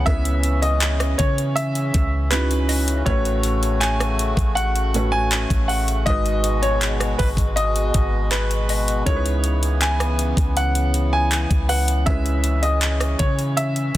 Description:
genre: contemporary R&B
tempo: 80 BPM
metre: 4/4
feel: straight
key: C# minor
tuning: A4 = 440 Hz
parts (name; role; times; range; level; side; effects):
- warm grand piano; melody; 0.0-14.0 s; B4 to G#5; -24 LUFS; equal; digital delay
- felt-muted upright piano; accompaniment; 0.0-14.0 s; G#2 to B4; -28 LUFS; right 3 dB; none
- hand-pumped harmonium; sustained chords; 0.0-14.0 s; B2 to F#4; -28 LUFS; left 2 dB; sidechain pumping
- soft 808-style bass; bass; 0.0-13.9 s; G#1 to C#3; -22 LUFS; equal; none
- mallet-like synth pluck; texture; 0.0-3.4, 8.7-12.9 s; B4 to F#5; -32 LUFS; left 1 dB; chorus, digital delay
- trap drum kit; drums; 0.1-14.0 s; handclaps, hi-hat, kick drum, rim click; -22 LUFS; equal; none
room: little or no reverb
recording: dense, heavily limited modern master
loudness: -18 LUFS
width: side -14 dB against mid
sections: 0.0-14.0 A section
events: none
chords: 0.0 C#m7; 3.1 A6; 6.1 G#m7; 9.1 C#m7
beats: | 0.07 0.82 1.57 2.32 | 3.07 3.82 4.57 5.32 | 6.07 6.82 7.57 8.32 | 9.07 9.82 10.57 11.32 | 12.07 12.82 13.57

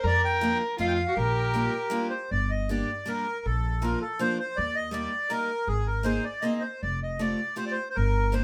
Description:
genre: musette waltz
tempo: 160 BPM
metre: 3/4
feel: rubato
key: G minor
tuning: A4 = 440 Hz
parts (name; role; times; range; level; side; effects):
- accordion; melody; 0.0-8.4 s; Ab4 to G5; -31 LUFS; equal; none
- warm violin; second line; 0.0-2.1 s; F4 to Bb4; -32 LUFS; equal; none
- upright bass; bass; 0.0-8.4 s; F1 to F2; -31 LUFS; equal; none
- picked steel-string acoustic guitar; accompaniment; 0.4-8.4 s; F3 to Ab4; -33 LUFS; equal; none
room: moderate studio reverb, RT60 0.6 s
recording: none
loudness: -28 LUFS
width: mono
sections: 0.0-2.3 A section; 2.3-8.4 B section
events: none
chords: 0.0 Bb/F; 0.8 F7; 1.2 Bb6; 2.3 Gm; 3.4 Bb; 4.6 Eb; 5.7 Abadd9; 6.8 Fadd9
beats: | 0.04 0.40 0.78 | 1.15 1.53 1.92 | 2.30 2.69 3.07 | 3.44 3.82 4.19 | 4.56 4.93 5.30 | 5.67 6.05 6.43 | 6.82 7.20 7.58 | 7.96 8.34

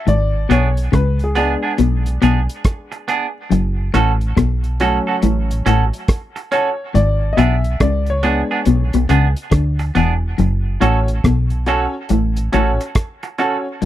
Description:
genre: roots reggae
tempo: 70 BPM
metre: 4/4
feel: swing 63% on 16ths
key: F# minor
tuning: A4 = 439 Hz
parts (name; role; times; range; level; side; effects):
- warm upright piano; stabs; 0.0-13.7 s; F#3 to E5; -22 LUFS; left 2 dB; none
- electric guitar at the edge of break-up; riff; 0.1-13.9 s; E2 to D3; -18 LUFS; left 5 dB; none
- deep dub fingered electric bass; bass; 0.1-13.9 s; E1 to D2; -17 LUFS; right 1 dB; none
- cloth-damped thuddy drum kit; drums; 0.1-13.9 s; hi-hat, kick drum, rim click; -19 LUFS; equal; none
- semi-hollow electric guitar; accompaniment; 0.5-13.6 s; B3 to A4; -22 LUFS; right 6 dB; dub echo
room: little or no reverb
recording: dry, close 1970s-style studio recording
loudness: -14 LUFS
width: side -13 dB against mid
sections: 0.0-10.4 A section; 10.4-13.9 B section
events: upright piano solo 0.0-10.4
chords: 0.1 G#dim; 3.5 F#m; 6.9 G#dim; 10.4 F#m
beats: | 0.07 0.93 1.79 2.65 | 3.51 4.37 5.23 6.09 | 6.95 7.80 8.66 9.52 | 10.38 11.24 12.10 12.96 | 13.82

